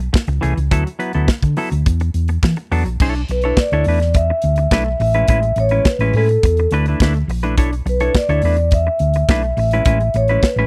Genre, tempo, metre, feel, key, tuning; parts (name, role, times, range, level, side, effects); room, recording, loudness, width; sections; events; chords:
disco; 105 BPM; 4/4; straight; A4 = 440 Hz
semi-hollow electric guitar; accompaniment; 0.0-10.7 s; E3 to C#5; -24 LUFS; equal
hollow-body short-scale fingered electric bass; bass; 0.0-10.7 s; A1 to E3; -20 LUFS; equal
modern studio drum kit; drums; 0.1-10.6 s; crash cymbal, hi-hat, kick drum, snare drum; -18 LUFS; equal
vibraphone with soft mallets; melody; 3.3-10.7 s; A4 to E5; -21 LUFS; equal
studio ambience; dry, close 1970s-style studio recording; -17 LUFS; mono
0.0-3.0 A section; 3.0-10.7 B section
0.0 Amaj7; 0.7 D69; 1.9 E9sus4; 3.0 Bm11; 3.9 E7sus4; 5.0 Amaj9; 6.4 E7sus4; 7.6 Bm11; 8.4 E7sus4; 9.6 Amaj9